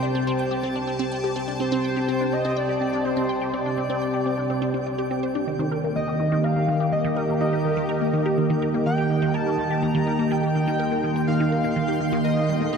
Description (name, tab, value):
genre	ambient, sequencer-driven space music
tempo	124 BPM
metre	4/4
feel	straight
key	unclear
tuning	A4 = 438 Hz
part	pulse-width lead	melody	0.0-12.8 s	C5 to Bb5	-28 LUFS	left 1 dB	chorus, ping-pong delay
part	sweeping resonant pad	sustained chords	0.0-12.8 s	C3 to C6	-23 LUFS	right 1 dB	chorus
part	resonant blip pluck	riff	0.0-12.8 s	Eb3 to G5	-28 LUFS	equal	phaser, ping-pong delay
part	twinkling granular texture	texture	0.0-12.8 s	G5	-37 LUFS	right 2 dB	built-in reverb, wide subtle chorus
room	wet huge ambient reverb, RT60 7.8 s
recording	dreamy mix soaked in reverb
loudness	-21 LUFS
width	side -6 dB against mid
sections	0.0-12.8 A section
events	none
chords	0.0 Csus2; 5.5 Eb